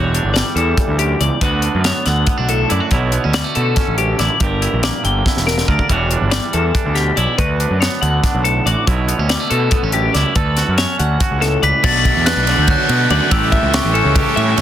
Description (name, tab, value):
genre	math rock and midwest emo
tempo	282 BPM (eighths)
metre	7/8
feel	straight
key	D major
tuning	A4 = 440 Hz
part	twangy electric guitar	accompaniment	0.0-14.6 s	D2 to B4	-21 LUFS	right 8 dB	none
part	twelve-string electric guitar	arpeggios	0.0-14.6 s	G4 to G5	-20 LUFS	left 7 dB	none
part	fuzz picked electric bass	bass	0.0-14.6 s	E1 to B2	-18 LUFS	equal	overdrive
part	crisp fusion drum kit	drums	0.1-14.6 s	crash cymbal, hi-hat, kick drum, ride cymbal, snare drum	-19 LUFS	equal	none
part	glockenspiel with soft plastic mallets	melody	11.6-14.2 s	C#6 to B6	-20 LUFS	left 1 dB	none
part	overdriven electric guitar	riff	11.8-14.6 s	A2 to E4	-23 LUFS	right 1 dB	none
room	light reverb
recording	dense, heavily limited modern master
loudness	-13 LUFS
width	side -11 dB against mid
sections	0.0-11.8 A section; 11.8-14.6 B section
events	drum fill 5.3-5.9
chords	0.0 Em9; 1.4 D6; 2.9 Bm11; 4.4 Gm6; 5.9 Em9; 7.4 D6; 8.9 Bm11; 10.4 Dmaj7; 11.8 Bm7; 13.3 A7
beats	0.14 0.36 0.57 0.78 1.00 1.21 | 1.42 1.64 1.85 2.06 2.27 2.49 2.70 | 2.92 3.13 3.34 3.56 3.77 3.98 4.19 | 4.41 4.62 4.83 5.05 5.26 5.47 5.68 | 5.90 6.11 6.32 6.54 6.75 6.96 7.17 | 7.38 7.60 7.81 8.02 8.23 8.45 8.66 | 8.87 9.08 9.30 9.51 9.72 9.93 10.14 | 10.36 10.57 10.78 10.99 11.20 11.41 11.63 | 11.84 12.05 12.26 12.47 12.68 12.89 13.10 | 13.31 13.52 13.73 13.95 14.16 14.37 14.58